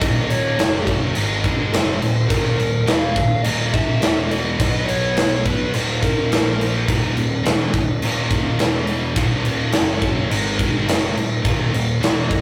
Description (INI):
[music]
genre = quiet-loud alternative rock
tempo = 105 BPM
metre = 4/4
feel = straight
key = unclear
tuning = A4 = 435 Hz
[part]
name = fuzz lead guitar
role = melody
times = 0.0-6.6, 12.3-12.4 s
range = Bb4 to F5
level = -27 LUFS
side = equal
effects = distortion
[part]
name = high-gain distorted guitar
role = riff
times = 0.0-12.4 s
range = Eb2 to B3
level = -26 LUFS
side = equal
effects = distortion
[part]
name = fuzz picked electric bass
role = bass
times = 0.0-12.4 s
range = Eb1 to B1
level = -26 LUFS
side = equal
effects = overdrive
[part]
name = big rock drum kit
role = drums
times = 0.0-12.4 s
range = crash cymbal, kick drum, snare drum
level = -22 LUFS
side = equal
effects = none
[sound]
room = moderate studio reverb, RT60 0.5 s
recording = rough rehearsal-room recording, warm saturation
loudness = -19 LUFS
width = mono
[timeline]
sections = 0.0-12.4 A section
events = none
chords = 0.0 Eb5; 0.6 Gb5; 1.2 Ab5; 1.7 Ebm; 4.0 E5; 4.6 B5; 5.7 Eb5; 6.3 Bb5; 6.9 Eb5; 8.6 E5; 9.2 Eb5; 9.7 Gb5; 10.3 Ab5; 10.9 Ebm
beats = | 0.02 0.59 1.16 1.74 | 2.31 2.88 3.45 4.02 | 4.59 5.17 5.74 6.31 | 6.88 7.45 8.02 8.60 | 9.17 9.74 10.31 10.88 | 11.45 12.02